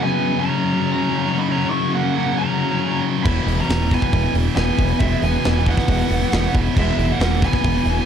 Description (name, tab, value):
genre	heavy metal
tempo	136 BPM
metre	4/4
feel	straight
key	unclear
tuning	A4 = 437 Hz
part	high-gain lead guitar	melody	0.0-8.1 s	E5 to Db6	-25 LUFS	right 2 dB	distortion
part	high-gain lead guitar	second line	0.0-8.1 s	G#3 to Fb4	-29 LUFS	right 2 dB	distortion
part	heavy high-gain guitar	riff	0.0-8.1 s	E2 to Gb3	-24 LUFS	right 11 dB	distortion
part	sludgy distorted guitar	riff	0.0-8.1 s	E2 to Db3	-22 LUFS	left 8 dB	overdrive
part	growling picked electric bass	bass	3.2-8.0 s	E1	-21 LUFS	equal	overdrive
part	tight metal drum kit	drums	3.3-8.0 s	crash cymbal, hi-hat, kick drum, snare drum	-22 LUFS	equal	none
room	studio reverb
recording	dark, warm production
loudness	-16 LUFS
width	side -8 dB against mid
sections	0.0-8.1 A section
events	none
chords	0.0 Gb; 3.2 E